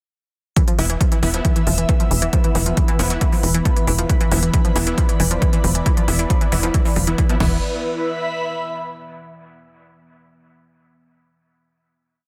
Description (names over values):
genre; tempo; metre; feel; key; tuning
driving peak-time techno; 136 BPM; 4/4; straight; unclear; A4 = 440 Hz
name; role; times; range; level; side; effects
analog pluck; riff; 0.6-7.6 s; E3 to F3; -27 LUFS; equal; chorus, tube saturation, sidechain pumping, dub echo
deep dark ambient pad; drone; 1.9-7.7 s; E3 to B3; -34 LUFS; equal; chorus, built-in reverb, sidechain pumping
electronic kick drum; drums; 0.6-7.5 s; none; -20 LUFS; equal; none
techno drum kit; drums; 0.6-7.5 s; crash cymbal, hi-hat; -28 LUFS; equal; sidechain pumping on hats, sidechain pumping on cymbals
airy breathy pad; texture; 1.1-9.3 s; E4 to B5; -29 LUFS; equal; chorus, phaser, sidechain pumping
rave stab; stabs; 0.8-7.6 s; E3 to E4; -31 LUFS; equal; chorus, built-in reverb, sidechain pumping, dub echo
tight sequencer bass; bass; 0.8-7.6 s; E1; -24 LUFS; equal; sidechain pumping
room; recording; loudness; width
light reverb, digital ambience; dense, heavily limited modern master; -18 LUFS; mono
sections
0.6-7.6 groove; 7.6-9.4 final chord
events
none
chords
0.6 E5